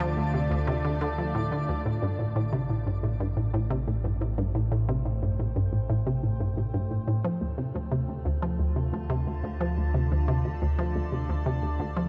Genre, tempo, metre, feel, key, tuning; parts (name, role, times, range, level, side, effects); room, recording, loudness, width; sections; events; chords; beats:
ambient, sequencer-driven space music; 89 BPM; 4/4; straight; D minor; A4 = 442 Hz
evolving wavetable pad; sustained chords; 0.0-12.1 s; A2 to A5; -37 LUFS; equal; chorus, built-in reverb
resonant blip pluck; riff; 0.0-12.1 s; D2 to F3; -30 LUFS; equal; chorus, delay
warm sub bass; bass; 0.0-12.1 s; A1 to D2; -34 LUFS; equal; tube saturation
twinkling granular texture; texture; 0.0-1.9 s; D4 to D5; -46 LUFS; equal; built-in reverb
moderate huge ambient reverb, RT60 7.5 s; cassette tape; -28 LUFS; mono
0.0-1.9 A section; 1.9-12.1 B section
fade-in on ambient pad 1.9-12.1
0.0 Dm; 1.9 Am7; 7.2 Dm
0.50 1.18 | 1.85 2.53 3.20 3.87 | 4.55 5.22 5.90 6.57 | 7.25 7.92 8.59 9.27 | 9.94 10.62 11.29 11.96